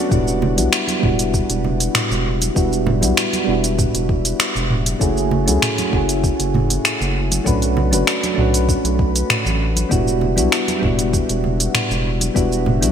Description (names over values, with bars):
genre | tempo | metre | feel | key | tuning
sunset chillout | 98 BPM | 4/4 | straight | E dorian | A4 = 440 Hz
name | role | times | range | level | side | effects
soft electric-piano-like synth keys | accompaniment | 0.0-12.9 s | G3 to C#5 | -20 LUFS | equal | chorus, auto-pan, low-pass filter, digital delay, shimmer reverb
round analog bass | bass | 0.1-12.9 s | E1 to C#2 | -21 LUFS | equal | none
electronic kick drum | drums | 0.1-12.5 s | none | -20 LUFS | equal | none
smooth R&B drum kit | drums | 0.1-12.9 s | finger snaps, hi-hat, shaker, toms | -20 LUFS | equal | gated reverb
congas | percussion | 0.4-12.9 s | none | -27 LUFS | right 2 dB | none
room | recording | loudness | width
moderate lush hall reverb, RT60 2.5 s | bright 1980s-style digital production | -15 LUFS | side -8 dB against mid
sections
0.1-12.9 A section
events
filter sweep on synth keys 0.1-12.9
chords
0.1 Em9; 5.0 F#m9; 7.5 Bm9; 9.9 Em9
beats
| 0.11 0.73 1.34 1.95 | 2.56 3.17 3.79 4.40 | 5.01 5.62 6.24 6.85 | 7.46 8.07 8.69 9.30 | 9.91 10.52 11.13 11.75 | 12.36